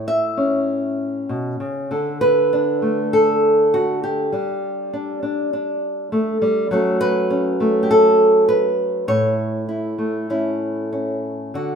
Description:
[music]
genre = folk, solo fingerstyle acoustic guitar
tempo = 100 BPM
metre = 4/4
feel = rubato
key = unclear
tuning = A4 = 440 Hz
[part]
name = nylon-string guitar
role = solo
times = 0.0-11.8 s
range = A2 to E5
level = -17 LUFS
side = equal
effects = none
[sound]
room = wet large studio reverb, RT60 1.4 s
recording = minimal, uncompressed stereo recording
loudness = -17 LUFS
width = side -6 dB against mid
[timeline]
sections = 0.0-11.5 A section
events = none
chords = 0.0 A; 1.9 D5; 4.3 Gsus2; 6.7 F#m; 9.1 A

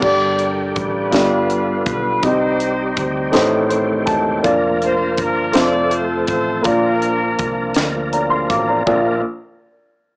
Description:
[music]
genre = slow gospel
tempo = 54 BPM (dotted quarters)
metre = 6/8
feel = straight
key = Bb major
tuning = A4 = 435 Hz
[part]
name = warm horn section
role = melody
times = 0.0-7.8 s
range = D4 to D5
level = -21 LUFS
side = equal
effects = cassette tape, analog delay
[part]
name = warm upright piano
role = accompaniment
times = 0.0-9.2 s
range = Bb1 to D6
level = -18 LUFS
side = equal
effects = cassette tape
[part]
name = overdriven tonewheel organ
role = sustained chords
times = 0.0-9.2 s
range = D3 to Bb4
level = -21 LUFS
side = equal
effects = slow rotary speaker, chorus vibrato, cassette tape
[part]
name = hollow-body short-scale fingered electric bass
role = bass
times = 0.0-9.2 s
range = E1 to D2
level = -30 LUFS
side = equal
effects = none
[part]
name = tight funk drum kit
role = drums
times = 0.0-9.0 s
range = crash cymbal, hi-hat, kick drum, snare drum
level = -22 LUFS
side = equal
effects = cassette tape
[sound]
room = moderate small room reverb, RT60 0.5 s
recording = home recording on cassette, small speaker sound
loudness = -15 LUFS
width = side -31 dB against mid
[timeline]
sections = 0.0-8.9 A section; 8.9-10.2 B section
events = upright piano fill 3.3-4.4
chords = 0.0 Gm; 1.1 G7; 2.2 Cm; 3.3 Am7b5; 4.4 Bb/F; 5.6 F; 6.7 Bb

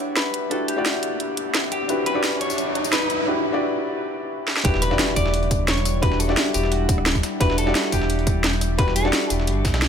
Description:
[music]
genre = liquid drum and bass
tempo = 174 BPM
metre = 4/4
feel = straight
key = E dorian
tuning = A4 = 440 Hz
[part]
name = clean electric guitar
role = melody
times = 0.0-9.4 s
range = F#4 to D5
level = -27 LUFS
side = left 2 dB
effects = low-pass filter, ping-pong delay
[part]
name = felt-muted upright piano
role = accompaniment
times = 0.0-9.9 s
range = D4 to D5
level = -26 LUFS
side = left 1 dB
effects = dub echo
[part]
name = airy breathy pad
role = sustained chords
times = 0.0-9.9 s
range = G3 to F#5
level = -31 LUFS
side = left 1 dB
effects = chorus, sidechain pumping
[part]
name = riser and impact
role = sound effects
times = 0.6-6.0 s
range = none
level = -29 LUFS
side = right 1 dB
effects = none
[part]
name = garage drum kit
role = drums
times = 0.2-9.9 s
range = hi-hat, rim click, snare drum, tambourine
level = -24 LUFS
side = equal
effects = overdrive, high-pass filter on hats, small room ambience, high-pass filter on snare, high-pass filter on perc
[part]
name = sub bass with octave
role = bass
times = 4.6-9.9 s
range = D1 to B1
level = -23 LUFS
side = equal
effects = none
[part]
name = dusty soul sampler-style drum kit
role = drums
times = 4.6-9.9 s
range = hi-hat, snare drum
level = -32 LUFS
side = equal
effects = high-pass filter on hats, small room ambience, high-pass filter on snare
[part]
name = electronic kick drum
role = drums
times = 4.6-9.7 s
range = none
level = -22 LUFS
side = right 1 dB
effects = overdrive, small room ambience
[sound]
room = light reverb, digital ambience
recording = none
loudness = -19 LUFS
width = side -7 dB against mid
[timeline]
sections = 0.0-4.6 A section; 4.6-9.9 B section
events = build-up 0.0-4.6; riser 0.6-3.3; drum fill 4.5; drop 4.6-9.9; impact 4.6-6.0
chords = 0.0 Em9

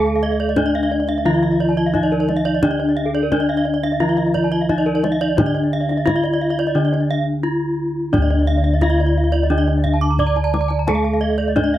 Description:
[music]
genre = Balinese gamelan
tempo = 87 BPM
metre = 4/4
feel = straight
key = D pelog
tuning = A4 = 440 Hz
[part]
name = gamelan-type bronze metallophone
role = melody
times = 0.0-11.8 s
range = D4 to D5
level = -20 LUFS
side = equal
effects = none
[part]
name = gamelan-type bronze metallophone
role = accompaniment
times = 0.0-11.8 s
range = D3 to A3-45c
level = -23 LUFS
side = right 2 dB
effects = none
[part]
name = gamelan-type bronze metallophone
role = arpeggios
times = 0.0-11.7 s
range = D5 to D6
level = -25 LUFS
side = right 5 dB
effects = none
[part]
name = gamelan-type bossed gongs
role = bass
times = 0.0-11.8 s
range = D2 to A4-45c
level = -22 LUFS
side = equal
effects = none
[part]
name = gamelan-type bronze metallophone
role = arpeggios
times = 0.1-11.8 s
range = A4-45c to D6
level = -25 LUFS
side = left 5 dB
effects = none
[part]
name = kendang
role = percussion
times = 0.6-11.7 s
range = none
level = -24 LUFS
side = left 2 dB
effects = none
[sound]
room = light reverb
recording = dry, close 1970s-style studio recording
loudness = -16 LUFS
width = side -13 dB against mid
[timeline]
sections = 0.0-11.8 A section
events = break 7.1-8.1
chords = none

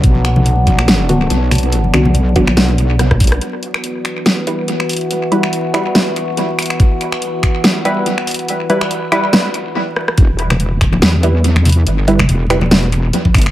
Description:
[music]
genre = deep dubstep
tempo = 142 BPM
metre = 4/4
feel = swing 55% on 16ths, half-time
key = E minor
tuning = A4 = 440 Hz
[part]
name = overtone-sweeping drone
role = sustained chords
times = 0.0-9.7 s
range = E3 to F#4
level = -21 LUFS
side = left 1 dB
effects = chorus, built-in reverb
[part]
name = wobble bass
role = bass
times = 0.0-3.4, 10.2-13.5 s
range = E1 to E2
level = -14 LUFS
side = equal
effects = chorus
[part]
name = dubstep drum kit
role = drums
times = 0.0-13.5 s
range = finger snaps, hi-hat, rim click, snare drum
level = -17 LUFS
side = equal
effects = analog delay
[part]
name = electronic kick drum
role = drums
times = 0.0-3.3, 6.8-7.5, 10.2-13.4 s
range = none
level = -12 LUFS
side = equal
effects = none
[part]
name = congas and bongos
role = percussion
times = 0.1-2.8, 10.5-13.3 s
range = none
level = -19 LUFS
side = left 1 dB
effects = dub echo
[part]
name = filtered dub chord stab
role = stabs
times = 1.1-12.6 s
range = D3 to B4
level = -18 LUFS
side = right 1 dB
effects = chorus, dub echo
[sound]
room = moderate spring reverb, RT60 1.6 s, digital ambience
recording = echo-heavy mix, vinyl crackle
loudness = -11 LUFS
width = side -14 dB against mid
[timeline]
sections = 0.0-3.4 A section; 3.4-10.2 B section; 10.2-13.5 C section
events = drum fill 3.0-3.4, 10.0; build-up 3.4-10.2; stop 9.8-10.2; drop 10.2-13.5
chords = 0.0 Bm; 3.4 Em

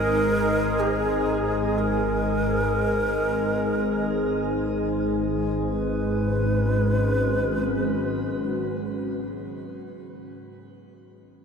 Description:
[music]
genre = dark ambient drone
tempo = free time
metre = none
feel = none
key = G# minor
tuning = A4 = 440 Hz
[part]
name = breathy long shakuhachi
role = melody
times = 0.0-8.8 s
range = G#4 to B4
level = -28 LUFS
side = equal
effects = shimmer reverb, diffuse ambient delay
[part]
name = deep dark ambient pad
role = sustained chords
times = 0.0-9.2 s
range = G#3 to D#5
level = -27 LUFS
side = equal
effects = chorus, built-in reverb, shimmer reverb
[part]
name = organ-like drone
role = drone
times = 0.0-8.8 s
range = G#1 to G#2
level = -26 LUFS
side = equal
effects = ensemble chorus, built-in reverb
[sound]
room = wet cathedral reverb, RT60 5.7 s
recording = in a vast, echoing space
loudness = -22 LUFS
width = side -6 dB against mid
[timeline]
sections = 0.0-5.7 A section; 5.7-9.6 B section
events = none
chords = 0.0 G#sus2; 5.7 G#m

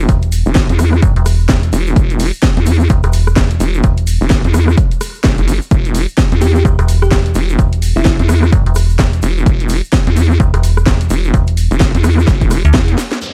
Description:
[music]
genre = bass house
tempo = 128 BPM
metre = 4/4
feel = swing 59% on 16ths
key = E minor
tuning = A4 = 440 Hz
[part]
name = vowel-sweep wobble bass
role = bass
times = 0.0-13.0 s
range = E1 to E2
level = -14 LUFS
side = equal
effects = chorus, tube saturation, sidechain pumping
[part]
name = egg shaker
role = percussion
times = 0.0-13.3 s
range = none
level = -36 LUFS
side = equal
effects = none
[part]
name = metallic FM bass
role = bass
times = 0.1-12.7 s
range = E1 to D2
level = -15 LUFS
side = equal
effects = tube saturation, sidechain pumping
[part]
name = electronic kick drum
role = drums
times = 0.1-12.9 s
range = none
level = -16 LUFS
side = equal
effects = overdrive, small room reverb
[part]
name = garage drum kit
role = drums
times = 0.1-13.2 s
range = hi-hat, rim click, snare drum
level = -22 LUFS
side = equal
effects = low-pass filter on hats, small room reverb, low-pass filter on snare
[part]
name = bell-like FM electric piano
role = melody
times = 6.4-8.4 s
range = E4 to G4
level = -23 LUFS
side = equal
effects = chorus, tape echo
[part]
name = downlifter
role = sound effects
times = 13.2-13.3 s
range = none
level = -24 LUFS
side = equal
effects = none
[sound]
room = little or no reverb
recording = dark, warm production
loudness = -12 LUFS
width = mono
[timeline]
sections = 0.0-13.2 A section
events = drop 0.0-13.2; drum fill 13.0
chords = none

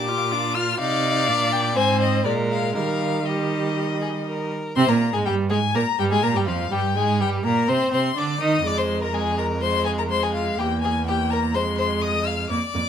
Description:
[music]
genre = quick classical-period movement for string quartet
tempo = 124 BPM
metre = 4/4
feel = straight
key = unclear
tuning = A4 = 440 Hz
[part]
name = clear violin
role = melody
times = 0.0-12.9 s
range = D5 to F6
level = -25 LUFS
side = left 9 dB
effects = none
[part]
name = rich violin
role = second line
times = 0.0-12.9 s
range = F4 to F5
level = -27 LUFS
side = left 2 dB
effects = none
[part]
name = clear viola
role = accompaniment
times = 0.0-12.8 s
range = F3 to F4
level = -25 LUFS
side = right 2 dB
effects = none
[part]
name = clear cello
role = bass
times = 0.0-12.8 s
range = E2 to Eb3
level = -26 LUFS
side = right 4 dB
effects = none
[sound]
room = light reverb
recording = close, detailed microphones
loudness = -20 LUFS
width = side -8 dB against mid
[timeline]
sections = 0.0-4.8 A section; 4.8-12.9 B section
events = none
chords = 0.0 Bb; 0.8 Cm7; 1.8 Ab; 2.3 Bb7(no3); 2.8 Eb; 4.8 Abmaj7sus2; 6.7 Gm; 7.7 Cmadd9; 8.6 Fm; 10.6 Edim; 11.5 Fm

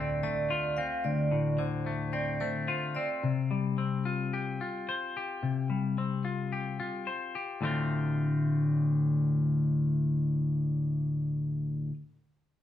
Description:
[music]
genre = rock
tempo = 109 BPM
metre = 4/4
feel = straight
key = D minor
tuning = A4 = 443 Hz
[part]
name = semi-hollow electric guitar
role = arpeggios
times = 0.0-11.9 s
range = D2 to C5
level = -28 LUFS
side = left 2 dB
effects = none
[part]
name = vibraphone with medium hard mallets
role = arpeggios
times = 0.0-3.2 s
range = C5 to F5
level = -34 LUFS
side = right 5 dB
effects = none
[sound]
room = wet studio reverb, RT60 0.7 s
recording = band playing live in one room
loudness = -28 LUFS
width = side -11 dB against mid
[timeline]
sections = 0.0-7.6 A section; 7.6-12.0 B section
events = none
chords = 0.0 Dm7; 3.2 Csus4; 7.6 Dm7

